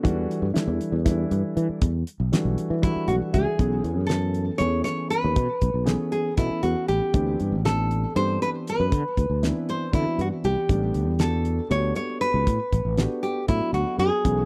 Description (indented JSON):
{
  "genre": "electric jazz fusion",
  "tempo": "237 BPM (eighths)",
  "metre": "7/8",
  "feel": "straight",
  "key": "unclear",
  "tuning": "A4 = 440 Hz",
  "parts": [
    { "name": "dark grand piano", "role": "accompaniment", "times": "0.0-14.5 s", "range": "E3 to F#5", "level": "-31 LUFS", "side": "equal", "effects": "none" },
    { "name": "sustaining fretless electric bass", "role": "bass", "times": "0.0-14.5 s", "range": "A1 to E3", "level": "-27 LUFS", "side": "equal", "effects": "none" },
    { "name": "damped 70s drum kit", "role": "drums", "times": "0.0-14.4 s", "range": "hi-hat, kick drum, snare drum", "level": "-26 LUFS", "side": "equal", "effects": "none" },
    { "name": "nylon-string guitar", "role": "melody", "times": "2.8-14.5 s", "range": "E4 to C#5", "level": "-28 LUFS", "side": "equal", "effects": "none" }
  ],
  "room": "little or no reverb",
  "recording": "dry, close 1970s-style studio recording",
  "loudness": "-24 LUFS",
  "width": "mono",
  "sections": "0.0-3.6 A section; 3.6-14.5 B section",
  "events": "grand piano fill 2.8-3.6",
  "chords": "0.0 Em11; 3.6 B13sus4; 7.1 D13sus4; 10.7 A13sus4",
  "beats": "| 0.05 0.30 0.55 0.80 1.06 1.31 1.56 | 1.82 2.07 2.32 2.58 2.83 3.08 3.34 | 3.59 3.84 4.10 4.35 4.60 4.86 5.11 | 5.37 5.62 5.87 6.13 6.38 6.63 6.89 | 7.14 7.40 7.65 7.90 8.16 8.41 8.67 | 8.92 9.17 9.43 9.68 9.94 10.19 10.44 | 10.70 10.95 11.20 11.46 11.71 11.96 12.22 | 12.47 12.72 12.98 13.23 13.48 13.74 13.99 | 14.24"
}